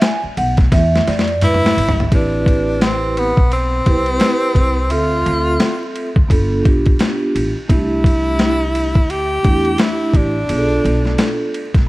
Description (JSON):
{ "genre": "hip hop, jazz-hop", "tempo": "86 BPM", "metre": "4/4", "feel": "swing 61% on 16ths", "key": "A minor", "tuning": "A4 = 437 Hz", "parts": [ { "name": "vibraphone with soft mallets", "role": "accompaniment", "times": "0.0-11.7 s", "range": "A3 to G#5", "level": "-20 LUFS", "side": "right 2 dB", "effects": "none" }, { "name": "boom bap sampler-style drum kit", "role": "drums", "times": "0.0-11.9 s", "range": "hi-hat, kick drum, ride cymbal, snare drum, toms", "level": "-16 LUFS", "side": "equal", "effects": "none" }, { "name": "upright bass", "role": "bass", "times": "0.2-11.9 s", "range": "G1 to G#2", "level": "-20 LUFS", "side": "equal", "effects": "none" }, { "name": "breathy tenor saxophone", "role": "melody", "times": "1.4-11.5 s", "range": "B3 to G4", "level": "-19 LUFS", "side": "equal", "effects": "none" } ], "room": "light reverb, small room ambience", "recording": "dark, warm production, vinyl crackle", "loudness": "-13 LUFS", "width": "side -19 dB against mid", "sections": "0.0-2.1 A section; 2.1-11.9 B section", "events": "vibraphone solo 0.0-2.1; drum fill 0.7-2.1", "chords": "0.0 B5; 0.7 E; 2.1 Am7; 4.9 Dm7; 6.3 G7; 7.7 C6; 10.5 Bm7b5", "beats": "0.02 0.72 1.42 | 2.12 2.81 3.51 4.21 | 4.91 5.61 6.30 7.00 | 7.70 8.39 9.09 9.79 | 10.49 11.19" }